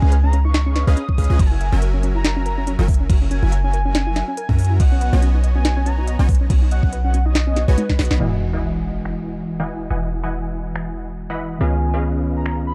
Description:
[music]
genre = future bass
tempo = 141 BPM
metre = 4/4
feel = swing 56% on 16ths, half-time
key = E lydian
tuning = A4 = 440 Hz
[part]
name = warm velvety synth lead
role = melody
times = 0.0-8.1, 11.6-12.7 s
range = B4 to D#6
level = -31 LUFS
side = equal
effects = chorus, sidechain pumping, delay
[part]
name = soft round pluck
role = arpeggios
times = 0.0-8.2 s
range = C#4 to E5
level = -32 LUFS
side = equal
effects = chorus, cassette tape, sidechain pumping, tape echo
[part]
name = supersaw stab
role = riff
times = 0.0-12.7 s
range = E3 to B5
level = -31 LUFS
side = equal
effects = sidechain pumping, low-pass filter
[part]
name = warm 808-style bass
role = bass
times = 0.0-12.7 s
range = E1 to F#2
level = -21 LUFS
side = equal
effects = sidechain pumping
[part]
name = trap drum kit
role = drums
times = 0.1-12.6 s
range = crash cymbal, finger snaps, hi-hat, snare drum, toms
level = -28 LUFS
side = equal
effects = low-pass filter on hats, low-pass filter on cymbals, low-pass filter on snare, low-pass filter on toms
[part]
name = electronic kick drum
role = drums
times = 1.1-8.0 s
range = none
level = -19 LUFS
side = equal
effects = overdrive
[part]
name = mellow tine electric piano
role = accompaniment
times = 8.2-12.7 s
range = D#3 to D#5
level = -29 LUFS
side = equal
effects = sidechain pumping, tape echo
[part]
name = sub drop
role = sound effects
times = 8.2-9.9 s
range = none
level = -29 LUFS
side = equal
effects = none
[sound]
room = little or no reverb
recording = dark, warm production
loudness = -19 LUFS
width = mono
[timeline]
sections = 0.0-8.2 A section; 8.2-12.7 B section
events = drop 0.0-8.2; drum fill 7.8-8.2; band accent 8.1; impact 8.2-9.9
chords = 0.0 C#9; 1.4 F#9; 4.8 B69; 8.2 Emaj9; 11.6 C#9

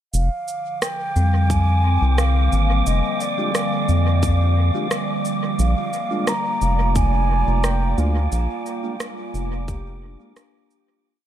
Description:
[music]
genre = ambient dub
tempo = 88 BPM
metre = 4/4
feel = straight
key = F dorian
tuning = A4 = 440 Hz
[part]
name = mellow hollow concert flute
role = melody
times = 0.1-9.3 s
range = D5 to Bb5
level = -26 LUFS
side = right 1 dB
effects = dub echo
[part]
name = warbly tape-like pad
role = sustained chords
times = 0.8-11.1 s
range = D3 to F5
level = -28 LUFS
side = right 2 dB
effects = chorus, built-in reverb
[part]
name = round analog bass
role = bass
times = 0.1-10.2 s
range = F1 to F2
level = -18 LUFS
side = equal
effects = tube saturation
[part]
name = electronic shaker and rim click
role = drums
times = 0.1-10.8 s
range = none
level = -29 LUFS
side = right 1 dB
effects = studio reverb, dub echo
[part]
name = wind-like tuned noise texture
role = texture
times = 1.0-11.1 s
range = D6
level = -30 LUFS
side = right 3 dB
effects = built-in reverb
[part]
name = vibraphone with medium hard mallets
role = arpeggios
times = 1.2-11.3 s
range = G3 to G5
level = -31 LUFS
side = left 7 dB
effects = dub echo
[part]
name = electronic kick drum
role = drums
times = 1.5-9.8 s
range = none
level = -23 LUFS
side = equal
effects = studio reverb
[part]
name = mellow tonewheel organ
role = stabs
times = 3.4-10.3 s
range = Ab3 to G4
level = -32 LUFS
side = right 1 dB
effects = slow rotary speaker, dub echo
[sound]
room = light reverb, digital ambience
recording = none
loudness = -18 LUFS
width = side -11 dB against mid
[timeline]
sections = 0.1-11.0 groove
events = fade-out 7.4-11.0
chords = 0.1 Fsus2; 5.6 Bb7

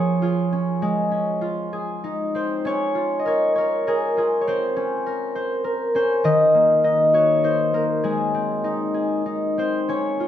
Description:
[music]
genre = children's music, lullaby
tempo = 100 BPM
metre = 3/4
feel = rubato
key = Db major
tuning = A4 = 440 Hz
[part]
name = concert harp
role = solo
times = 0.0-10.3 s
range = Eb3 to Eb5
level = -19 LUFS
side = equal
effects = none
[sound]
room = light reverb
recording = none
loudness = -19 LUFS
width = side -10 dB against mid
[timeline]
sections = 0.0-2.7 A section; 2.7-10.3 A section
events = none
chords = 0.0 Db/F; 0.8 Db/Ab; 2.0 Cm; 2.7 Db6; 4.5 Bbmadd9; 6.2 Ebm; 8.0 Ab

